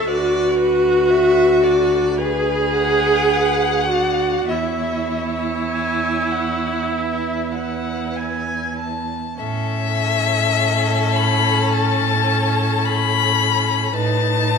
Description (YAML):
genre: classical, slow romantic movement for string quartet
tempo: 48-58 BPM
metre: 4/4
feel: rubato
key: A major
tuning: A4 = 439 Hz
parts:
  - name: rich violin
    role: melody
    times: 0.0-14.6 s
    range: A4 to B5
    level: -23 LUFS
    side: left 10 dB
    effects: none
  - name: rich violin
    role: second line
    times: 0.0-14.6 s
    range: A4 to A5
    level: -25 LUFS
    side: left 3 dB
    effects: none
  - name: rich viola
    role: accompaniment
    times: 0.0-14.6 s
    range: C#4 to G#4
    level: -19 LUFS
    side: right 1 dB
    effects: none
  - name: rich cello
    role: bass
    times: 0.0-14.6 s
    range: D2 to A2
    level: -23 LUFS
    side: right 2 dB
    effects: none
room: moderate scoring stage reverb, RT60 1.9 s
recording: minimal, uncompressed stereo recording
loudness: -16 LUFS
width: side -6 dB against mid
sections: 0.0-9.4 A section; 9.4-14.6 B section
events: none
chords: 0.1 Bm/D; 4.5 E69; 9.4 A; 14.0 B7/A